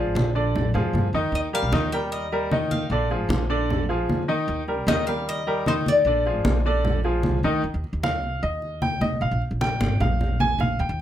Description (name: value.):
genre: latin, Cuban son and guajira.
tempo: 152 BPM.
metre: 4/4.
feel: straight.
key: unclear.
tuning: A4 = 440 Hz.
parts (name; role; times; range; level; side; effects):
Cuban tres; melody; 0.0-7.2 s; C5 to G5; -26 LUFS; left 4 dB; none.
clear concert grand piano; arpeggios; 0.0-11.0 s; D3 to Ab5; -25 LUFS; equal; none.
upright bass; bass; 0.0-11.0 s; Ab1 to Ab2; -26 LUFS; equal; none.
congas; percussion; 0.2-11.0 s; none; -27 LUFS; equal; none.
room: moderate studio reverb, RT60 0.5 s.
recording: none.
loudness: -21 LUFS.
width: side -11 dB against mid.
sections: 0.0-7.6 A section; 7.6-11.0 B section.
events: grand piano solo 7.6-11.0.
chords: 0.0 Bb7; 1.3 Eb; 2.9 Bb7; 4.5 Eb; 6.1 Bb7; 7.6 Cmadd11; 9.2 Bb5.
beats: 0.15 0.55 0.94 | 1.33 1.73 2.12 2.51 | 2.90 3.30 3.69 4.09 | 4.48 4.87 5.27 5.66 | 6.06 6.45 6.85 7.24 | 7.64 8.03 8.43 8.82 | 9.22 9.61 10.01 10.40 | 10.80.